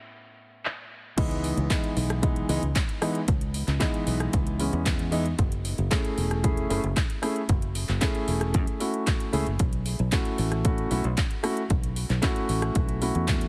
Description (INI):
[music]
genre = nu-disco, nu disco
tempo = 114 BPM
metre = 4/4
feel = straight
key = C# minor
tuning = A4 = 440 Hz
[part]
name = warm concert grand piano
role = accompaniment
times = 0.0-13.5 s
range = A2 to G#4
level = -32 LUFS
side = equal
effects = sidechain pumping, delay
[part]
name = house drum kit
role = drums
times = 0.7-13.5 s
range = crash cymbal, handclaps, hi-hat, rim click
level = -35 LUFS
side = equal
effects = low-pass filter on snare, low-pass filter on hats, low-pass filter on cymbals
[part]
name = fingered electric bass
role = bass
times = 1.2-13.5 s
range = E1 to F#2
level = -30 LUFS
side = equal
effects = none
[part]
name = electronic kick drum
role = drums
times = 1.2-13.4 s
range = none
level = -28 LUFS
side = equal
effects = none
[sound]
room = digital ambience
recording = heavily compressed radio sound, multiband compression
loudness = -26 LUFS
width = mono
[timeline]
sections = 0.0-1.2 A section; 1.2-13.5 B section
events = drop 1.2-13.5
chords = 0.0 Amaj9; 1.2 C#m9; 5.4 F#m9; 9.6 B9sus4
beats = 0.12 0.65 | 1.18 1.70 2.23 2.76 | 3.28 3.81 4.33 4.86 | 5.39 5.91 6.44 6.97 | 7.49 8.02 8.54 9.07 | 9.60 10.12 10.65 11.18 | 11.70 12.23 12.76 13.28